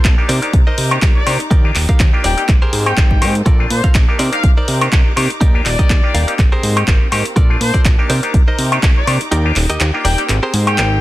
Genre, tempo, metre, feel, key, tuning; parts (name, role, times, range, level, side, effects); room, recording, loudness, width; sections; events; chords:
filtered disco house; 123 BPM; 4/4; swing 55% on 16ths; A4 = 440 Hz
clear chamber string section; sustained chords; 0.0-11.0 s; Bb3 to D6; -28 LUFS; left 2 dB; sidechain pumping
direct-recorded clean electric guitar; riff; 0.0-10.7 s; Eb4 to F5; -22 LUFS; right 1 dB; sidechain pumping
fat analog bass; bass; 0.0-11.0 s; Eb1 to C3; -18 LUFS; equal; sidechain pumping
electronic kick drum; drums; 0.0-8.9 s; -12 LUFS; equal
punchy analog drum machine; drums; 0.0-10.9 s; handclaps, hi-hat, woodblock; -20 LUFS; left 2 dB; sidechain pumping on hats, sidechain pumping on perc
auto-wah clav; accompaniment; 0.2-11.0 s; A3 to G4; -22 LUFS; equal; phaser, sidechain pumping
bright trumpet section; melody; 1.2-11.0 s; C5 to G5; -23 LUFS; left 3 dB; vintage 12-bit sampler grit, sidechain pumping, ping-pong delay
little or no reverb; dense, heavily limited modern master; -11 LUFS; side -16 dB against mid
0.0-11.0 A section
kick drops out 9.3-11.0
0.3 Cm9; 1.5 Ebmaj7; 2.5 Abmaj9; 3.5 Bbmaj7; 4.2 Cm9; 5.4 Ebmaj7; 6.4 Abmaj9; 7.4 Bbmaj7; 8.1 Cm9; 9.3 Ebmaj7; 10.3 Abmaj9